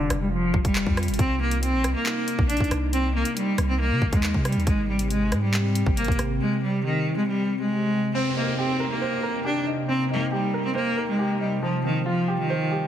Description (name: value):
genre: hip hop, drill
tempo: 138 BPM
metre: 4/4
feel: half-time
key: C minor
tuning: A4 = 441 Hz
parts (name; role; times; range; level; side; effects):
- clear cello; melody; 0.0-12.9 s; D3 to D4; -25 LUFS; equal; low-pass filter, ping-pong delay
- glassy FM pad; sustained chords; 0.0-12.9 s; C3 to G4; -30 LUFS; right 1 dB; ensemble chorus, built-in reverb
- long sustained 808-style bass; bass; 0.0-6.4 s; F1 to C3; -26 LUFS; equal; none
- drill drum kit; drums; 0.1-6.3 s; handclaps, hi-hat, kick drum, rim click; -25 LUFS; equal; none
- warm baby grand piano; accompaniment; 8.1-12.9 s; F3 to C5; -28 LUFS; right 1 dB; none
- downlifter; sound effects; 8.1-11.6 s; none; -36 LUFS; equal; none
room: light reverb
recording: heavily compressed radio sound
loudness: -22 LUFS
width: side -10 dB against mid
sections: 0.0-8.1 A section; 8.1-12.9 B section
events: filter sweep on cello 0.0-1.2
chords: 0.0 Fsus2; 1.2 Cm7; 4.7 Abmaj7; 8.1 Cm7; 11.6 Fsus2